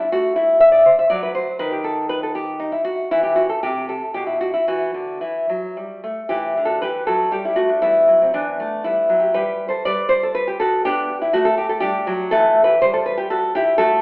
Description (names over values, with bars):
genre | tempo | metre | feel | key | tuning
classical, baroque-style dance for nylon-string guitar | 109-124 BPM | 3/4 | rubato | E minor | A4 = 440 Hz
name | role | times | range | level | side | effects
nylon-string guitar | solo | 0.0-14.0 s | B2 to E5 | -16 LUFS | equal | none
room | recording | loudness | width
wet recital hall reverb, RT60 1.5 s | telephone sound | -16 LUFS | side -26 dB against mid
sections
0.0-6.3 A section; 6.3-14.0 B section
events
none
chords
0.1 F#m7b5; 1.6 N.C.; 4.7 Em; 9.3 G; 12.3 Emadd11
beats
| 0.12 0.62 1.12 | 1.60 2.10 2.61 | 3.11 3.62 4.14 | 4.67 5.22 5.76 | 6.30 6.82 7.33 | 7.83 8.34 8.85 | 9.35 9.85 10.35 | 10.85 11.35 11.84 | 12.33 12.82 13.31 | 13.80